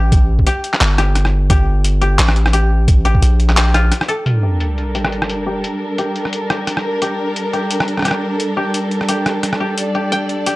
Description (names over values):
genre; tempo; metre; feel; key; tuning
half-time drum and bass; 174 BPM; 4/4; swing 56% on 16ths, half-time; G minor; A4 = 440 Hz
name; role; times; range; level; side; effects
koto; arpeggios; 0.0-10.6 s; G3 to G5; -23 LUFS; left 2 dB; low-pass filter, tape echo
long sustained 808-style bass; bass; 0.0-3.9 s; G1 to Bb1; -14 LUFS; equal; transformer saturation
boom bap sampler-style drum kit; drums; 0.1-10.5 s; handclaps, hi-hat, rim click; -19 LUFS; equal; low-pass filter on hats, low-pass filter on snare
electronic kick drum; drums; 0.1-3.2 s; none; -13 LUFS; equal; none
dark studio string section; sustained chords; 4.3-10.6 s; G3 to D5; -20 LUFS; equal; sidechain pumping, low-pass filter
sub drop; sound effects; 4.3-5.6 s; none; -19 LUFS; equal; none
room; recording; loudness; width
light reverb, digital ambience; dry, gritty hardware recording, cassette tape; -14 LUFS; side -20 dB against mid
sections
0.0-4.3 A section; 4.3-10.6 B section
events
break 3.9-4.3; impact 4.3-5.6; filter sweep on koto 4.3-10.6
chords
0.0 Gmadd9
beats
| 0.12 0.47 0.81 1.16 | 1.50 1.84 2.19 2.54 | 2.88 3.22 3.57 3.91 | 4.26 4.60 4.95 5.29 | 5.64 5.98 6.33 6.67 | 7.02 7.36 7.71 8.05 | 8.40 8.74 9.09 9.43 | 9.78 10.12 10.47